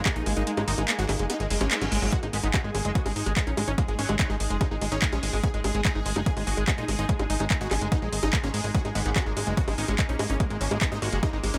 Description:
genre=psychedelic trance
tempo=145 BPM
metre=4/4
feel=straight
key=unclear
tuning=A4 = 440 Hz
part: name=bubbling stepped-filter texture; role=sustained chords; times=0.0-11.6 s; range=G#3 to G#4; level=-39 LUFS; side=equal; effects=chorus, built-in reverb, sidechain pumping
part: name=plucky analog bass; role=bass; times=0.0-11.6 s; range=F#1 to A#1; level=-31 LUFS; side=equal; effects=none
part: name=granular cloud pad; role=texture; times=0.0-11.6 s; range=D#4 to A#5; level=-42 LUFS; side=equal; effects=none
part: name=supersaw stab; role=melody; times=0.1-11.6 s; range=G#3 to G#4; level=-36 LUFS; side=equal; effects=phaser, sidechain pumping, tape echo
part: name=screaming distorted acid line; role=riff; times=0.1-11.6 s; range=F#3 to D#4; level=-37 LUFS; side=equal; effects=distortion, chorus, sidechain pumping, dub echo
part: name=drum and bass drum kit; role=drums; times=0.1-11.6 s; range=bongos, handclaps, hi-hat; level=-32 LUFS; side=equal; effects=none
part: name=electronic kick drum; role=drums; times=0.1-11.3 s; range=none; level=-28 LUFS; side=equal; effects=overdrive
part: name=reverse cymbal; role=sound effects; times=1.5-2.1 s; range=none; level=-39 LUFS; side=equal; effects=none
part: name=metallic wobble bass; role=second line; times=2.3-4.3, 9.0-11.2 s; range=F#3 to F#4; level=-42 LUFS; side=equal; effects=chorus, sidechain pumping, high-pass filter, delay
room=little or no reverb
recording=none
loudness=-26 LUFS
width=mono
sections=0.0-11.6 A section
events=kick drops out 0.5-2.1; reverse cymbal 1.5-2.1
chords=0.0 G#5

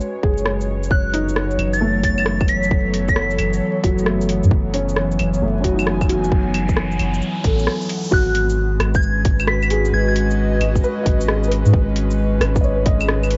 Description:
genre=future garage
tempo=133 BPM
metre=4/4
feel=swing 66% on 16ths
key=unclear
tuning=A4 = 440 Hz
part: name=felt-muted upright piano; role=accompaniment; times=0.0-13.4 s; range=F#3 to D#5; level=-27 LUFS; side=equal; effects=sidechain pumping, cassette tape, tape echo
part: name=airy breathy pad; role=sustained chords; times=0.0-13.4 s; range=E3 to G#5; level=-25 LUFS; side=equal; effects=chorus, sidechain pumping, cassette tape
part: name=garage drum kit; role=drums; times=0.0-13.4 s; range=claves, hi-hat, rim click, shaker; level=-27 LUFS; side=equal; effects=none
part: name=soft dub sub bass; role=bass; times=0.2-13.4 s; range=F#1 to G#2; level=-23 LUFS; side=equal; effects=sidechain pumping
part: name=electronic kick drum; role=drums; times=0.2-13.0 s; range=none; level=-21 LUFS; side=equal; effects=none
part: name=soft synth bell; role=melody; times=0.9-3.5, 8.1-10.1 s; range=F#6 to B6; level=-26 LUFS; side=equal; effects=chorus, phaser, analog delay
part: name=riser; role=sound effects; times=5.6-8.1 s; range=none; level=-36 LUFS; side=equal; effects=none
room=light reverb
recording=home recording on cassette, vinyl crackle, nothing above 7.8 kHz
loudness=-18 LUFS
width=mono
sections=0.0-8.1 A section; 8.1-13.4 B section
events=riser 5.6-8.1; break 7.7-8.1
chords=0.0 G#m7; 0.9 F#m7; 8.1 G#m7

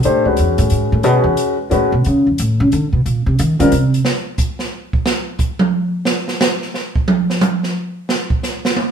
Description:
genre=modal jazz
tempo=179 BPM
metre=3/4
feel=swing 64% on 8ths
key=unclear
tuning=A4 = 445 Hz
part: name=warm upright piano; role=accompaniment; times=0.0-3.7 s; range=G3 to C5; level=-16 LUFS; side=left 2 dB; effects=none
part: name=upright bass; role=bass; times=0.0-4.0 s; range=C#2 to D#3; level=-14 LUFS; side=equal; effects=none
part: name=open jazz drum kit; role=drums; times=0.0-8.9 s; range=hi-hat, kick drum, snare drum, toms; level=-17 LUFS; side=right 2 dB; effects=none
room=moderate studio reverb, RT60 0.9 s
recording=band playing live in one room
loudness=-14 LUFS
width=side -7 dB against mid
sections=0.0-4.1 A section; 4.1-8.9 A section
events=upright bass solo 0.0-4.1; drum solo 4.1-8.9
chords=0.0 Dmaj9; 3.1 D#5; 4.1 N.C.

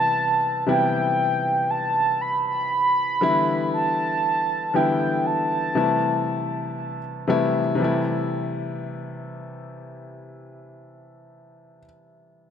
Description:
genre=R&B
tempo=59 BPM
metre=4/4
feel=straight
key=A minor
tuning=A4 = 440 Hz
part: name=mellow horn-like synth lead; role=melody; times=0.0-6.8 s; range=G5 to B5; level=-22 LUFS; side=right 1 dB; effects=chorus, ping-pong delay
part: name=warm baby grand piano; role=accompaniment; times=0.0-12.5 s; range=C3 to E4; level=-25 LUFS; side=left 3 dB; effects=none
room=light reverb, small room ambience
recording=none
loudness=-20 LUFS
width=side -8 dB against mid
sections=0.0-7.8 A section; 7.8-11.9 B section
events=none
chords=0.0 Cmaj7; 3.2 Em7; 5.8 Am7

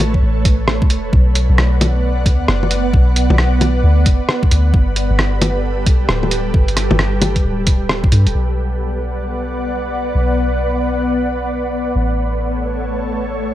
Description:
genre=future garage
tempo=133 BPM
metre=4/4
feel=swing 63% on 16ths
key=B minor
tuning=A4 = 440 Hz
part: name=ethereal airy pad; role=sustained chords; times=0.0-13.5 s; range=G3 to F#5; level=-20 LUFS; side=equal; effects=ensemble chorus, built-in reverb, sidechain pumping
part: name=soft 808-style bass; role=bass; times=0.0-13.5 s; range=D1 to G2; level=-17 LUFS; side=equal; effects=sidechain pumping
part: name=lo-fi sampler-style drum kit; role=drums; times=0.0-8.3 s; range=bongos, hi-hat, rim click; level=-18 LUFS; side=equal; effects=low-pass filter on hats, studio reverb, low-pass filter on snare, low-pass filter on perc
part: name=electronic kick drum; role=drums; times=0.1-8.1 s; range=none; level=-13 LUFS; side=equal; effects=studio reverb
room=light reverb, digital ambience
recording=none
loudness=-13 LUFS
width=side -13 dB against mid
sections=0.0-8.3 A section; 8.3-13.5 B section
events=none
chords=0.0 Aadd9; 1.1 Bm; 4.7 Gadd9; 8.3 Bm; 12.0 Aadd9

